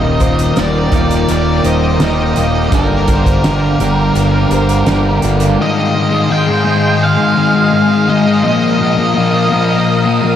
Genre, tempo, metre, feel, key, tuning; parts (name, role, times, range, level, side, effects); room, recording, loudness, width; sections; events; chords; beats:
rock, shoegaze and dream pop; 84 BPM; 4/4; straight; A4 = 439 Hz
octave-fuzz lead guitar; melody; 0.0-10.4 s; Bb4 to G5; -18 LUFS; right 2 dB; distortion, analog delay
lush unison pad; sustained chords; 0.0-10.4 s; Eb4 to Eb6; -20 LUFS; right 2 dB; chorus
picked twelve-string acoustic guitar; arpeggios; 0.0-5.6 s; F4 to Eb5; -24 LUFS; left 4 dB; wide subtle chorus, analog delay
thick fuzz guitar; riff; 0.0-10.4 s; Eb2 to Bb3; -13 LUFS; left 4 dB; distortion, lush chorus
twangy electric guitar; riff; 0.0-5.6 s; Eb2 to G4; -20 LUFS; right 8 dB; reverse reverb
fuzz fingered electric bass; bass; 0.0-5.6 s; Eb1 to G1; -18 LUFS; right 1 dB; overdrive
loose indie drum kit; drums; 0.2-5.6 s; hi-hat, kick drum, snare drum; -18 LUFS; right 1 dB
wet huge ambient reverb, RT60 4.2 s; dreamy mix soaked in reverb; -10 LUFS; side -10 dB against mid
0.0-5.6 A section; 5.6-10.4 B section
0.0 Ebmaj7; 2.7 Gm7; 5.6 Ab6; 8.4 Bbsus4
0.57 1.29 2.01 | 2.73 3.44 4.16 4.87 | 5.59 6.30 7.02 7.73 | 8.44 9.15 9.87